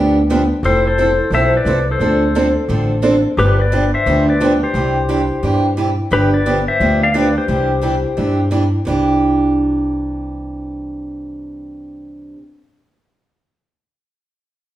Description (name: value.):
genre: country, western swing.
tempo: 175 BPM.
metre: 4/4.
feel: swing 64% on 8ths.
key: C major.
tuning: A4 = 441 Hz.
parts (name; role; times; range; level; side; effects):
picked steel-string acoustic guitar; accompaniment; 0.0-12.4 s; C3 to A4; -17 LUFS; right 2 dB; none.
upright bass; bass; 0.0-12.3 s; F1 to G2; -19 LUFS; equal; none.
pedal steel guitar; melody; 0.7-8.5 s; G4 to F5; -18 LUFS; left 3 dB; none.
room: wet large studio reverb, RT60 1.1 s.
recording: band playing live in one room.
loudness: -13 LUFS.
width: side -13 dB against mid.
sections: 0.0-6.1 A section; 6.1-8.9 B section; 8.9-11.6 C section.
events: none.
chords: 0.0 G7; 0.6 Fmaj7; 2.0 Dm7; 3.4 G7; 4.8 Cadd9; 6.1 G7; 7.5 Cadd9.